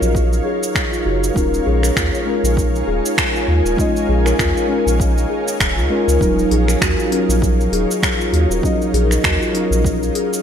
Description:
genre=organic downtempo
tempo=99 BPM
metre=4/4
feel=swing 56% on 16ths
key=Eb minor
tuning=A4 = 440 Hz
part: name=muted felt-like synth keys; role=accompaniment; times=0.0-10.4 s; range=Gb3 to Eb5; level=-22 LUFS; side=left 1 dB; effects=chorus, sidechain pumping, low-pass filter, ping-pong delay
part: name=ethereal airy pad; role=sustained chords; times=0.0-10.4 s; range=Eb4 to Ab5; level=-23 LUFS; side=right 1 dB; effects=ensemble chorus, built-in reverb, tremolo, sidechain pumping
part: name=warm sub bass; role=bass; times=0.0-10.1 s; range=Eb1 to Eb2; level=-18 LUFS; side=equal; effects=sidechain pumping
part: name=organic electronic drum kit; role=drums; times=0.0-10.4 s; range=finger snaps, hi-hat, shaker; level=-22 LUFS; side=right 1 dB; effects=gated reverb
part: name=electronic kick drum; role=drums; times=0.1-10.0 s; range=none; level=-22 LUFS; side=equal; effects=overdrive
part: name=steel tongue drum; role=arpeggios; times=0.4-10.4 s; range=Eb4 to Bb4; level=-22 LUFS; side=left 1 dB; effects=ping-pong delay
room=moderate lush hall reverb, RT60 1.8 s, digital ambience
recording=bright 1980s-style digital production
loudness=-14 LUFS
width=side -8 dB against mid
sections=0.0-10.4 A section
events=none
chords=0.0 Ebm7; 1.4 Bbm7/Eb; 6.2 Ebm7

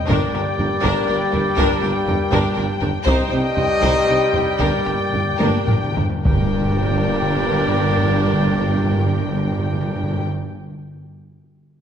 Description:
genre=cinematic, epic orchestral film score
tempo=69-81 BPM (dotted quarters)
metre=6/8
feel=straight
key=G minor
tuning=A4 = 440 Hz
part: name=dark symphonic violin section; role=melody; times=0.0-10.3 s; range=G5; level=-28 LUFS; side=left 4 dB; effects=none
part: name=clear trombone section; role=sustained chords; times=0.0-10.3 s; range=G2 to G3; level=-28 LUFS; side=right 2 dB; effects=none
part: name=mellow French horn section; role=sustained chords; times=0.0-10.3 s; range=Bb3 to G4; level=-27 LUFS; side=left 4 dB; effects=none
part: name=warm trumpet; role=stabs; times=0.0-10.3 s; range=D5 to Eb5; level=-25 LUFS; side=equal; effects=none
part: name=warm symphonic violin section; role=second line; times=0.1-10.3 s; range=Bb4 to C5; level=-27 LUFS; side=left 3 dB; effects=none
part: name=dark symphonic viola section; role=accompaniment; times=0.1-10.3 s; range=D4 to Eb4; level=-28 LUFS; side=equal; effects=none
part: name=clear symphonic double bass section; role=bass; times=0.1-10.3 s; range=G1 to C2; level=-27 LUFS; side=right 3 dB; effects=none
part: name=dark tuba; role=bass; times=0.1-10.3 s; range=G1 to C2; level=-26 LUFS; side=right 3 dB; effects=none
part: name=warm symphonic cello section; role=bass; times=0.1-10.3 s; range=G2 to C3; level=-26 LUFS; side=right 2 dB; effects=none
part: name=taiko ensemble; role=drums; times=0.1-7.4 s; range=none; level=-24 LUFS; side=equal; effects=none
part: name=timpani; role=percussion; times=4.6-10.3 s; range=G2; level=-25 LUFS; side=left 1 dB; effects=none
part: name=impact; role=sound effects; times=6.3-8.0 s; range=none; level=-30 LUFS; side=equal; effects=none
room=wet scoring stage reverb, RT60 1.7 s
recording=none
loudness=-16 LUFS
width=side -8 dB against mid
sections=0.0-6.3 A section; 6.3-9.7 B section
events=slowing down 2.3-6.3; timpani fill 4.6-6.3; drum fill 5.4-6.3; impact 6.3-8.0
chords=0.1 Gm; 3.1 Cm; 4.6 Gm

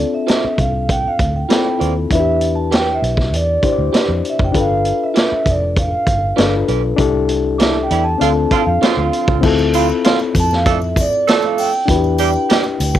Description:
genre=lush 1970s-style soul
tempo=98 BPM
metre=4/4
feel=straight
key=D dorian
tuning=A4 = 436 Hz
part: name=vibraphone with soft mallets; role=melody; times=0.0-13.0 s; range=D5 to A5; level=-19 LUFS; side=right 2 dB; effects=cassette tape
part: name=reed electric piano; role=accompaniment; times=0.0-13.0 s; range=C4 to D5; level=-19 LUFS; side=left 8 dB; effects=cassette tape
part: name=vintage muted fingered electric bass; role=bass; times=0.0-13.0 s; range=F1 to F2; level=-20 LUFS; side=equal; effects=none
part: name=electric guitar through a small old amp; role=riff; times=0.3-9.0 s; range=E4 to D5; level=-22 LUFS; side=right 10 dB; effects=cassette tape
part: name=vintage drum kit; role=drums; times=0.3-13.0 s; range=crash cymbal, hi-hat, kick drum, snare drum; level=-18 LUFS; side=equal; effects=cassette tape
part: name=small celesta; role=texture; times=1.5-2.4, 7.6-10.9 s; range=B5 to D6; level=-33 LUFS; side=equal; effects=none
part: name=warm horn section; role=stabs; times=7.9-12.6 s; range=A2 to A4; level=-18 LUFS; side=right 11 dB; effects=cassette tape
part: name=triangle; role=percussion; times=9.4-13.0 s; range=none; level=-32 LUFS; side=left 12 dB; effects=none
room=light reverb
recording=home recording on cassette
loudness=-13 LUFS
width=side -11 dB against mid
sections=0.0-9.4 A section; 9.4-13.0 B section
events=vibraphone solo 0.0-9.4; band accent 7.0-9.4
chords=0.0 Dm7; 2.1 Em7; 4.6 G7; 7.0 C69; 8.2 Dm7; 11.9 Em7

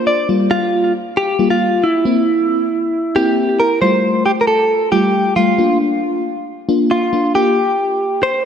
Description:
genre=pop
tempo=136 BPM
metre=4/4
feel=straight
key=F major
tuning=A4 = 440 Hz
part: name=direct-recorded clean electric guitar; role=melody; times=0.0-8.4 s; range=E4 to D5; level=-15 LUFS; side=equal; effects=analog chorus, analog delay
part: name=FM electric piano with soft pad layer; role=accompaniment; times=0.0-8.0 s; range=G3 to G4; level=-17 LUFS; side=left 2 dB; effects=chorus, tremolo
room=wet lush hall reverb, RT60 2.4 s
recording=none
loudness=-13 LUFS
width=side -8 dB against mid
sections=0.0-3.8 A section; 3.8-8.5 B section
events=none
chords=0.3 Gm7; 2.1 C7; 3.8 Fadd9; 5.6 Bb; 7.3 Gm7

